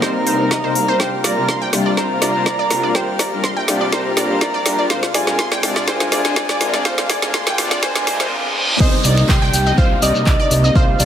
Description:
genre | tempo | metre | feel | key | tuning
progressive house | 123 BPM | 4/4 | straight | C minor | A4 = 438 Hz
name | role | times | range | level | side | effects
soft octave-layered synth lead | melody | 0.0-11.1 s | Eb5 to Bb5 | -22 LUFS | equal | chorus, sidechain pumping, digital delay
dark studio string section | sustained chords | 0.0-11.1 s | C3 to G4 | -25 LUFS | equal | sidechain pumping
wide unison pluck | arpeggios | 0.0-11.1 s | C5 to C6 | -23 LUFS | right 1 dB | cassette tape, sidechain pumping, digital delay
soft supersaw | stabs | 0.0-8.3 s | C3 to D5 | -23 LUFS | left 2 dB | sidechain pumping, digital delay
fat analog bass | bass | 0.0-11.1 s | G1 to C2 | -24 LUFS | equal | none
deep house drum kit | drums | 0.0-11.1 s | crash cymbal, finger snaps, handclaps, hi-hat, snare drum | -20 LUFS | equal | none
electronic kick drum | drums | 0.0-10.9 s | none | -17 LUFS | equal | high-pass filter on kick
drifting glass-harmonics texture | texture | 0.0-8.3 s | F5 to F6 | -34 LUFS | right 2 dB | none
riser, reverse cymbal and downlifter | sound effects | 3.2-11.1 s | none | -26 LUFS | right 1 dB | none
soft synth bell | second line | 8.8-11.1 s | Eb6 to G6 | -29 LUFS | right 5 dB | chorus, phaser, sidechain pumping, digital delay
shekere | percussion | 8.8-11.1 s | none | -24 LUFS | left 3 dB | none
room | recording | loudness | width
light reverb, digital ambience | high-pass filter | -14 LUFS | side -9 dB against mid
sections
0.0-8.8 A section; 8.8-11.1 B section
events
build-up 0.0-8.8; drum fill 0.0-8.3; filter sweep on supersaw synth 0.0-8.8; filter sweep on string section 0.0-8.8; filter sweep 0.0-8.8; riser 3.2-8.8; reverse cymbal 7.8-8.8; drop 8.8-11.1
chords
0.0 Cm7; 1.0 Gm7/C; 4.9 Bb7/C; 8.8 Cm7

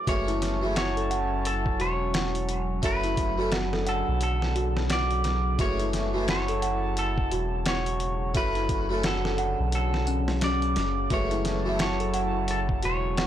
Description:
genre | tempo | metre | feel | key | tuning
trip hop | 87 BPM | 4/4 | swing 60% on 16ths | F# minor | A4 = 440 Hz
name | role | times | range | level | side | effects
semi-hollow electric guitar | melody | 0.0-13.3 s | A4 to D5 | -31 LUFS | equal | tape echo
harpsichord | accompaniment | 0.0-11.8 s | E3 to A4 | -33 LUFS | equal | tremolo, vintage 12-bit sampler grit, tape echo
small celesta | arpeggios | 0.0-13.3 s | C#4 to F#5 | -32 LUFS | equal | tape echo
warbly tape-like pad | sustained chords | 0.1-13.3 s | C#3 to A5 | -33 LUFS | right 2 dB | chorus, built-in reverb
soft dub sub bass | bass | 0.1-13.3 s | E1 to B1 | -29 LUFS | equal | tube saturation
dusty soul sampler-style drum kit | drums | 0.1-13.3 s | hi-hat, kick drum, snare drum | -30 LUFS | equal | low-pass filter on hats, small room ambience, low-pass filter on snare, low-pass filter on kick
room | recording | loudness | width
light reverb | blown-out, overdriven recording, overdrive | -24 LUFS | side -11 dB against mid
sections
0.1-13.3 A section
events
none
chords
0.1 F#m7; 2.8 Dmaj7/F#; 5.6 F#m7; 8.4 Dmaj7/F#; 11.1 F#m7

